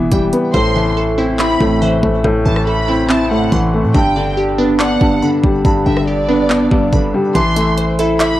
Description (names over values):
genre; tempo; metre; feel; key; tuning
hip hop, trap; 141 BPM; 4/4; half-time; A minor; A4 = 439 Hz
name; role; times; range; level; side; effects
felt-muted upright piano; accompaniment; 0.0-8.4 s; G2 to E5; -15 LUFS; left 2 dB; low-pass filter, cassette tape
glassy wavetable pluck; arpeggios; 0.0-8.4 s; G3 to C6; -20 LUFS; right 3 dB; chorus, low-pass filter, cassette tape, analog delay
hard-hitting 808-style bass; bass; 0.0-8.4 s; E1 to A2; -20 LUFS; right 1 dB; none
trap drum kit; drums; 0.1-8.3 s; handclaps, hi-hat, kick drum, rim click; -19 LUFS; right 1 dB; none
warm studio violin section; second line; 0.5-8.4 s; D5 to C6; -22 LUFS; right 2 dB; cassette tape, analog delay
room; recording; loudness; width
light reverb; home recording on cassette; -12 LUFS; side -14 dB against mid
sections
0.0-8.4 A section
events
hi-hats muted 0.5-7.3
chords
0.0 Em; 0.5 Am; 3.9 G; 7.3 Am